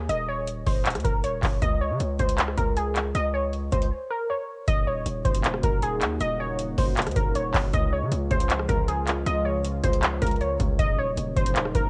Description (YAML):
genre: hip hop, trap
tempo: 157 BPM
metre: 4/4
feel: half-time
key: Eb dorian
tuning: A4 = 440 Hz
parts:
  - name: distorted 808-style bass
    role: bass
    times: 0.0-11.9 s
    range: Eb1 to Db3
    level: -31 LUFS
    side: equal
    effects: distortion
  - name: warbly dusty pluck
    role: melody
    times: 0.1-11.9 s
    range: Ab4 to Eb5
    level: -30 LUFS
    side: equal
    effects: chorus, low-pass filter, cassette tape, analog delay
  - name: booming analog drum machine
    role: drums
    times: 0.1-11.9 s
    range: handclaps, hi-hat, kick drum, rim click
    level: -27 LUFS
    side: equal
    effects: none
  - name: dark analog pad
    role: sustained chords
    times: 5.0-11.9 s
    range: Db3 to Gb4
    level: -36 LUFS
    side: equal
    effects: chorus, cassette tape
room: little or no reverb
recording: home recording on cassette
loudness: -25 LUFS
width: mono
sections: 0.0-4.7 A section; 4.7-11.9 B section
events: break 3.9-4.7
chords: 0.0 Bbmadd9/Eb (rootless); 1.6 Bbmadd9/Db (rootless); 4.7 Ebm7; 7.7 Db; 10.8 Ebm7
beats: | 0.09 0.47 0.85 1.24 | 1.62 2.00 2.38 2.77 | 3.15 3.53 3.91 4.29 | 4.68 5.06 5.44 5.82 | 6.21 6.59 6.97 7.35 | 7.73 8.12 8.50 8.88 | 9.26 9.64 10.03 10.41 | 10.79 11.17 11.56